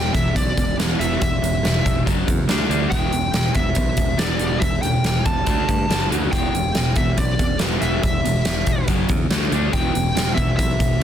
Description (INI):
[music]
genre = hard rock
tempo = 141 BPM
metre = 4/4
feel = straight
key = E dorian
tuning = A4 = 440 Hz
[part]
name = smooth overdriven lead guitar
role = melody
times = 0.0-11.0 s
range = D5 to A5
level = -25 LUFS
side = equal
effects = slapback echo
[part]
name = overdriven semi-hollow guitar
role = riff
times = 0.0-11.0 s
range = E2 to D4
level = -23 LUFS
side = equal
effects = none
[part]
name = modern bright picked electric bass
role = bass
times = 0.0-11.0 s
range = E1 to G2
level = -25 LUFS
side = equal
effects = none
[part]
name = huge arena drum kit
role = drums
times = 0.1-10.9 s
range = hi-hat, kick drum, snare drum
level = -21 LUFS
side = equal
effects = none
[sound]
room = little or no reverb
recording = dense, heavily limited modern master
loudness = -17 LUFS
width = side -10 dB against mid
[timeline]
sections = 0.0-11.0 A section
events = none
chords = 0.0 E5; 2.1 F#5; 2.5 D5; 2.9 Em; 5.5 D5; 5.9 F#5; 6.3 Em; 8.9 F#5; 9.3 D5; 9.7 Em